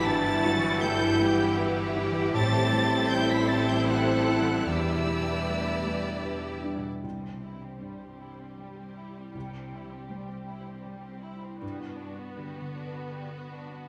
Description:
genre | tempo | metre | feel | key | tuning
cinematic, emotional film score for orchestra | 78 BPM | 3/4 | rubato | unclear | A4 = 440 Hz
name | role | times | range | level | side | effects
rich studio violin section | melody | 0.0-13.9 s | F#4 to B6 | -37 LUFS | equal | none
rich studio violin section | second line | 0.0-13.9 s | G3 to D5 | -40 LUFS | equal | none
small flute group | second line | 0.0-6.6 s | E5 to B5 | -38 LUFS | equal | none
clear studio viola section | accompaniment | 0.0-13.9 s | G3 to E4 | -38 LUFS | equal | none
felt-muted upright piano | accompaniment | 0.0-13.9 s | C2 to C5 | -38 LUFS | equal | none
mellow French horn section | sustained chords | 0.0-6.7 s | E3 to E4 | -33 LUFS | equal | none
concert harp | arpeggios | 0.0-13.9 s | E2 to F#5 | -37 LUFS | equal | none
rich studio cello section | bass | 0.0-12.2 s | G2 to A4 | -38 LUFS | equal | none
rich studio double bass section | bass | 0.0-6.8 s | G1 to E2 | -36 LUFS | equal | none
room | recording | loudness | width
wet scoring stage reverb, RT60 2.0 s | none | -26 LUFS | mono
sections
0.0-7.0 A section; 7.0-13.9 B section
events
none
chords
0.0 Emadd9/G; 2.3 Am7; 4.7 Em7; 7.0 C; 11.6 Gmaj7

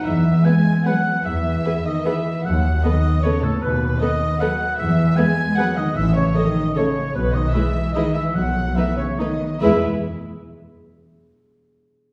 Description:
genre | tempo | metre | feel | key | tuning
classical | 136-166 BPM | 3/4 | rubato | E major | A4 = 440 Hz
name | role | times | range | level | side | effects
rich chamber violin section | melody | 0.0-9.8 s | B4 to C#5 | -34 LUFS | equal | none
rich chamber violin section | second line | 0.0-9.8 s | A4 to G#5 | -32 LUFS | equal | none
warm oboe | second line | 0.0-9.8 s | A4 to G#5 | -28 LUFS | equal | none
dark chamber cello section | bass | 0.0-9.8 s | A2 to G#3 | -26 LUFS | equal | none
clear chamber double bass section | bass | 0.1-9.8 s | A1 to E2 | -24 LUFS | equal | none
rich chamber viola section | accompaniment | 0.5-9.8 s | G#3 to A4 | -27 LUFS | equal | none
timpani | percussion | 8.4-9.8 s | E2 to B2 | -36 LUFS | equal | none
room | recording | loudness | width
wet scoring stage reverb, RT60 1.6 s | heard from further back in the room | -20 LUFS | mono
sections
0.0-9.6 A section; 9.6-10.9 B section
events
none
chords
0.1 E; 2.4 B7/D#; 4.8 E; 6.0 A; 7.2 E/B; 8.3 B7; 9.6 E

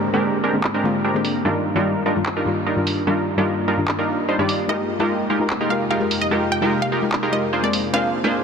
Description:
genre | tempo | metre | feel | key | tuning
future bass | 148 BPM | 4/4 | half-time | unclear | A4 = 440 Hz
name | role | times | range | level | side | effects
soft round pluck | accompaniment | 0.0-8.4 s | G2 to Bb4 | -24 LUFS | left 3 dB | chorus, digital delay
ethereal airy pad | sustained chords | 0.0-8.4 s | F2 to G4 | -29 LUFS | equal | ensemble chorus, built-in reverb
supersaw stab | riff | 0.0-8.4 s | G3 to D5 | -21 LUFS | right 1 dB | low-pass filter, digital delay
downlifter | sound effects | 0.0-1.4 s | none | -36 LUFS | right 1 dB | none
pop drum kit | drums | 0.6-7.8 s | handclaps, hi-hat | -28 LUFS | right 1 dB | low-pass filter on snare, low-pass filter on toms, low-pass filter on hats
wide unison pluck | melody | 4.7-8.1 s | D5 to G5 | -25 LUFS | right 1 dB | digital delay
room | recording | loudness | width
moderate huge ambient reverb, RT60 4.6 s | dense, heavily limited modern master | -18 LUFS | side -6 dB against mid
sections
0.0-8.4 A section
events
filter sweep on ambient pad 0.0-8.4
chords
0.0 Abmaj9#11; 1.4 Ebmaj9/G; 4.7 Fm11; 7.7 Bb9

